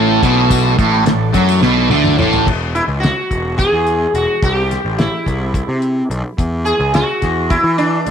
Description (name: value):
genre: psychedelic rock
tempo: 214 BPM (eighths)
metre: 7/8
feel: straight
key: E mixolydian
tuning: A4 = 441 Hz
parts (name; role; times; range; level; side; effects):
- combo organ; sustained chords; 0.0-2.5 s; E3 to A4; -24 LUFS; right 9 dB; none
- fuzz guitar; riff; 0.0-2.5 s; A2 to F#3; -13 LUFS; equal; distortion, phaser
- fuzz picked electric bass; bass; 0.0-8.1 s; E1 to E3; -18 LUFS; equal; overdrive
- damped 70s drum kit; drums; 0.2-8.1 s; crash cymbal, hi-hat, kick drum, snare drum, toms; -19 LUFS; left 1 dB; none
- tambourine; percussion; 0.5-2.4 s; none; -33 LUFS; left 14 dB; none
- sitar; melody; 2.7-8.1 s; D4 to G#4; -17 LUFS; equal; slapback echo
room: light reverb, small room ambience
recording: 1960s-style stereo with parts hard left and right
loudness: -12 LUFS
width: side -8 dB against mid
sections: 0.0-2.5 A section; 2.5-8.1 B section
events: drum fill 1.6-2.5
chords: 0.0 A5; 2.5 E; 4.4 C; 6.4 C#madd11